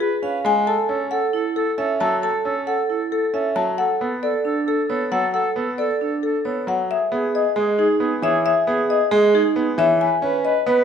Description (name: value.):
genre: classical, minimalist pattern music.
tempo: 270 BPM (eighths).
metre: 7/8.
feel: straight.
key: E major from 6.9 s.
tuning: A4 = 440 Hz.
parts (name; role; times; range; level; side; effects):
marimba with medium hard mallets; melody; 0.0-10.7 s; G#4 to A5; -22 LUFS; left 6 dB; none.
warm oboe; second line; 0.0-10.8 s; G#4 to B4; -28 LUFS; right 3 dB; none.
vibraphone with hard mallets; arpeggios; 0.0-10.8 s; D4 to E#5; -22 LUFS; right 5 dB; none.
bright grand piano; accompaniment; 0.2-10.8 s; E3 to C#4; -25 LUFS; right 1 dB; none.
room: wet recital hall reverb, RT60 1.5 s.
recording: none.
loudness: -18 LUFS.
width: side -8 dB against mid.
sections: 0.0-6.9 A section; 6.9-10.8 B section.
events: none.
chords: 0.0 C#7; 0.7 F#m; 3.8 Bm7; 6.9 E6; 10.0 G#m.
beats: 0.01 0.23 0.45 | 0.67 0.90 1.12 1.34 1.56 1.78 2.01 | 2.23 2.45 2.67 2.90 3.12 3.34 3.56 | 3.78 4.01 4.23 4.45 4.67 4.89 5.12 | 5.34 5.56 5.78 6.01 6.23 6.45 6.67 | 6.89 7.12 7.34 7.56 7.78 8.01 8.23 | 8.45 8.67 8.89 9.12 9.34 9.56 9.78 | 10.01 10.23 10.45 10.67.